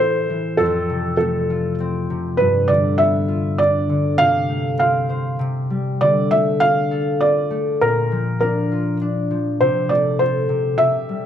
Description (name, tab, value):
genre	children's music, lullaby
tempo	100 BPM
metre	3/4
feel	straight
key	F major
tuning	A4 = 439 Hz
part	felt-muted upright piano	melody	0.0-11.3 s	A4 to F5	-18 LUFS	right 2 dB	none
part	concert harp	accompaniment	0.0-11.3 s	F2 to C5	-20 LUFS	left 2 dB	none
room	light reverb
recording	close, detailed microphones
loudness	-16 LUFS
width	side -9 dB against mid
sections	0.0-11.3 A section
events	none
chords	0.0 Am; 0.6 F; 2.4 G7; 4.2 F/C; 5.4 C5; 6.0 Dm; 7.8 Bb; 9.6 Amadd11/C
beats	| 0.59 1.19 1.79 | 2.39 2.99 3.59 | 4.18 4.78 5.39 | 6.00 6.61 7.21 | 7.81 8.41 9.01 | 9.60 10.20 10.79